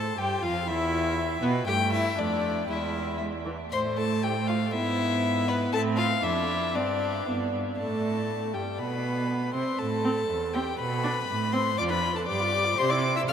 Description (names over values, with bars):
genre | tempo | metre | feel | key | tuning
quick classical-period movement for string quartet | 120 BPM | 2/4 | straight | unclear | A4 = 440 Hz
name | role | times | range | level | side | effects
rich violin | melody | 0.0-13.3 s | B4 to F6 | -30 LUFS | left 6 dB | none
rich viola | accompaniment | 0.0-13.3 s | E3 to A4 | -31 LUFS | right 2 dB | none
warm cello | bass | 0.0-13.3 s | E2 to C3 | -31 LUFS | right 4 dB | none
warm violin | second line | 0.2-13.3 s | B3 to F5 | -31 LUFS | left 2 dB | none
room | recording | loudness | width
wet huge ambient reverb, RT60 8.2 s | in a vast, echoing space | -25 LUFS | side -8 dB against mid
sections
0.0-7.8 A section; 7.8-13.3 B section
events
none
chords
0.0 N.C.; 0.7 E5; 1.7 A5/G; 2.2 Dm/F; 2.7 E; 3.7 Am7; 4.7 E/G#; 5.7 Am; 6.2 Dm/F; 6.7 Gsus4; 7.3 G; 7.8 Gsus2; 8.8 N.C.; 9.8 Am; 10.8 Bm; 11.3 Am; 11.8 Dm/F; 12.3 G5; 12.8 C